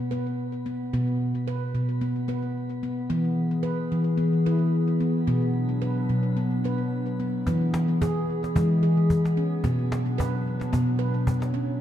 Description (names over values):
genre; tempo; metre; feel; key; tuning
world meditative, meditative tuned percussion; 110 BPM; 4/4; swing 56% on 16ths; B kumoi; A4 = 440 Hz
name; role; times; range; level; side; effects
handpan; arpeggios; 0.0-11.8 s; B2 to B4; -24 LUFS; equal; ping-pong delay, shimmer reverb
warbly tape-like pad; sustained chords; 3.4-11.8 s; E3 to G#4; -28 LUFS; left 1 dB; chorus, built-in reverb, shimmer reverb
cajon; percussion; 7.5-11.5 s; none; -31 LUFS; equal; none
room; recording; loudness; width
wet recital hall reverb, RT60 1.6 s, small room reverb; dark, warm production; -23 LUFS; side -11 dB against mid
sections
0.0-7.5 A section; 7.5-11.8 B section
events
none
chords
0.0 N.C.; 3.1 E; 5.3 Bm; 7.5 E; 9.6 Bm